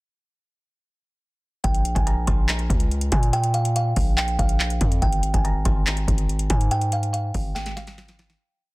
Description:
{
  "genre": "hip hop, trap",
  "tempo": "142 BPM",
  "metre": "4/4",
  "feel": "half-time",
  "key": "Bb dorian",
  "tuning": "A4 = 440 Hz",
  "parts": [
    { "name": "kalimba", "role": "melody", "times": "1.6-8.4 s", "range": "F5 to C6", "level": "-28 LUFS", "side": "right 1 dB", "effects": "low-pass filter, tape echo" },
    { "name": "distorted 808-style bass", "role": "bass", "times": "1.6-8.4 s", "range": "Ab1 to Bb2", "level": "-24 LUFS", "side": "equal", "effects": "distortion" },
    { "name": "booming analog drum machine", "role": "drums", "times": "1.6-8.4 s", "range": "handclaps, hi-hat, kick drum, snare drum", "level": "-22 LUFS", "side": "equal", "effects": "none" }
  ],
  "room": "little or no reverb",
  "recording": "dense, heavily limited modern master",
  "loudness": "-20 LUFS",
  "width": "side -23 dB against mid",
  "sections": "1.6-8.4 hook",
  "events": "fade-out 6.7-8.4; drum fill 7.6-8.4",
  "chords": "1.6 Bb5; 5.0 Absus2"
}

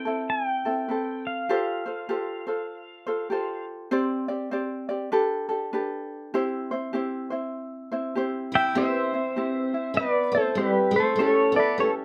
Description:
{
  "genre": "Hawaiian",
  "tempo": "99 BPM",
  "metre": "4/4",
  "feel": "swing 61% on 8ths",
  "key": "C major",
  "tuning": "A4 = 439 Hz",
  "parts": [
    { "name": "pedal steel guitar", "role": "melody", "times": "0.0-3.6, 8.6-11.9 s", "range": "G4 to A5", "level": "-27 LUFS", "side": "equal", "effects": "none" },
    { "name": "ukulele", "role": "accompaniment", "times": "0.0-12.0 s", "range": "C4 to D5", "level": "-30 LUFS", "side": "equal", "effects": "none" },
    { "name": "picked steel-string acoustic guitar", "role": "second line", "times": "8.5-11.9 s", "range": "G3 to E4", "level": "-30 LUFS", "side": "equal", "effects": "none" }
  ],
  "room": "wet small room reverb, RT60 0.5 s",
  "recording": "rough home demo mix",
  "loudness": "-26 LUFS",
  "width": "mono",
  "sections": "0.0-8.8 A section; 8.8-12.0 A section",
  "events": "none",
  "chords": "0.0 Amadd9; 1.5 Fadd9; 3.9 Gsus4; 5.1 Gadd9; 6.3 C; 11.2 A7"
}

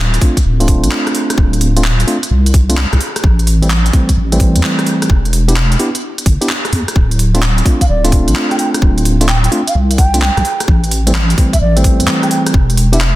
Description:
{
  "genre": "UK garage, two-step garage",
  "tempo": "129 BPM",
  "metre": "4/4",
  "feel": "swing 67% on 16ths",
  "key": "D minor",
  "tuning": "A4 = 440 Hz",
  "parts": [
    { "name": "deep soft wobble bass", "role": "bass", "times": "0.0-13.2 s", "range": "D1 to E2", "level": "-12 LUFS", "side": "equal", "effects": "chorus, sidechain pumping" },
    { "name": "garage drum kit", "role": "drums", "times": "0.1-13.1 s", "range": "handclaps, hi-hat, rim click", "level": "-18 LUFS", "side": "equal", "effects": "soft clipping on snare" },
    { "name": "bright tine electric piano", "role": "stabs", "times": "0.2-13.0 s", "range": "E3 to G4", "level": "-17 LUFS", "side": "equal", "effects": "vintage 12-bit sampler grit, low-pass filter, tape echo" },
    { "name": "electronic kick drum", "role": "drums", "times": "0.2-12.7 s", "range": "none", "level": "-10 LUFS", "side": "equal", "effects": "overdrive" },
    { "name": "mellow baroque flute", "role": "melody", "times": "7.8-13.0 s", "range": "D5 to G5", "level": "-20 LUFS", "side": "right 2 dB", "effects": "tape echo" }
  ],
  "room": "light reverb",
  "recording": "dense, heavily limited modern master",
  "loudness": "-10 LUFS",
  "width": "side -16 dB against mid",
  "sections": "0.0-13.2 A section",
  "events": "filter sweep on tine electric piano 0.0-13.2",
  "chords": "0.0 Dm7; 3.2 Am7; 5.1 Em; 7.0 Dm7; 10.7 Am7; 12.5 N.C."
}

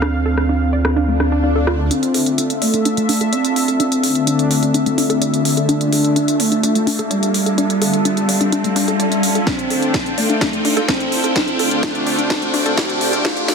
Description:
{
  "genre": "melodic techno",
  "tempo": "127 BPM",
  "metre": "4/4",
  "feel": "straight",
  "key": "D minor",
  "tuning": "A4 = 440 Hz",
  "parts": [
    { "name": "expressive synth lead", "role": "melody", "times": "0.0-13.5 s", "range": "G3 to F4", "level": "-19 LUFS", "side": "equal", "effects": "chorus, sidechain pumping, tape echo" },
    { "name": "sweeping resonant pad", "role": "sustained chords", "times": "0.0-13.5 s", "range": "D4 to G5", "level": "-24 LUFS", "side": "equal", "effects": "chorus, sidechain pumping" },
    { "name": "warbly dusty pluck", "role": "arpeggios", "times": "0.0-13.5 s", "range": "A3 to D5", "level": "-23 LUFS", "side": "equal", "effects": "chorus, sidechain pumping, tape echo" },
    { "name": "round analog bass", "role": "bass", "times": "0.0-1.9 s", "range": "D2", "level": "-18 LUFS", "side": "equal", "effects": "sidechain pumping" },
    { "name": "techno drum kit", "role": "drums", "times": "0.0-13.5 s", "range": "hi-hat, rim click, snare drum", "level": "-22 LUFS", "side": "equal", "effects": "overdrive, low-pass filter on snare, studio reverb, sidechain pumping on hats, low-pass filter on hats" },
    { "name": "brassy analog pad", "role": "stabs", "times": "0.3-13.5 s", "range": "D3 to D4", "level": "-23 LUFS", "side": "left 2 dB", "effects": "chorus, sidechain pumping, tape echo" },
    { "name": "swell and riser", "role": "sound effects", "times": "1.1-13.5 s", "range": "none", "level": "-25 LUFS", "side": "equal", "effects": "none" },
    { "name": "electronic kick drum", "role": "drums", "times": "9.5-13.3 s", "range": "none", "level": "-26 LUFS", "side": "equal", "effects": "studio reverb" }
  ],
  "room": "moderate huge ambient reverb, RT60 4.3 s",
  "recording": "dense, heavily limited modern master, high-pass filter",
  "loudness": "-14 LUFS",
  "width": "side -5 dB against mid",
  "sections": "0.0-1.9 A section; 1.9-13.5 B section",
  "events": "filter sweep on analog synth pad 0.0-1.9, 1.9-13.5; swell 1.1-1.9; build-up 1.9-13.5; riser 1.9-13.5; filter sweep on synth arpeggio sound 1.9-13.5; drum fill 9.5-13.5",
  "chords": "0.0 Dm; 1.9 Dmadd9"
}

